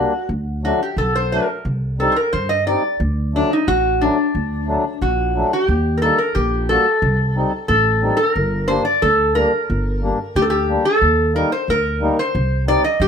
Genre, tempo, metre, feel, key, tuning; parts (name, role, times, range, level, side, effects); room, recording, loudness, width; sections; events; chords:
klezmer; 90 BPM; 2/4; straight; D phrygian dominant; A4 = 439 Hz
metal-body resonator slide guitar; melody; 0.0-13.1 s; D4 to Eb5; -18 LUFS; equal
mellow accordion; accompaniment; 0.0-12.8 s; F#3 to F#4; -21 LUFS; left 2 dB
upright bass; bass; 0.0-13.1 s; G1 to G2; -21 LUFS; right 1 dB
moderate studio reverb, RT60 0.6 s; -16 LUFS; side -7 dB against mid
0.0-5.7 A section; 5.7-13.1 B section
0.3 D; 1.6 Cm; 3.0 D; 5.7 Eb; 7.0 Cm; 8.4 Gm; 11.0 Eb; 12.3 Cm